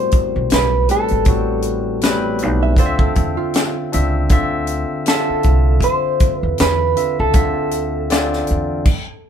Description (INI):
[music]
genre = R&B, neo-soul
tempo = 79 BPM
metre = 4/4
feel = swing 55% on 16ths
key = unclear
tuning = A4 = 439 Hz
[part]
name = electric guitar through a small old amp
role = melody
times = 0.0-9.3 s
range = A4 to C5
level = -20 LUFS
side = right 2 dB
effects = tremolo
[part]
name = barky tine electric piano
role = accompaniment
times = 0.0-8.9 s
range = A2 to E5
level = -21 LUFS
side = left 2 dB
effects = overdrive
[part]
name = upright bass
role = bass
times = 0.1-8.8 s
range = G#1 to E2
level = -20 LUFS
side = equal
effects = none
[part]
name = tight funk drum kit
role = drums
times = 0.1-9.1 s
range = crash cymbal, hi-hat, kick drum, snare drum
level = -17 LUFS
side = equal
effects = none
[part]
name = hollow-body jazz guitar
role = second line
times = 2.6-4.5 s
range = F4 to E5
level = -25 LUFS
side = right 10 dB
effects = none
[sound]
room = light reverb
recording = band playing live in one room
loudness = -14 LUFS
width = side -8 dB against mid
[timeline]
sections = 0.0-9.3 A section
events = none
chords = 0.0 Am9; 2.8 Dm9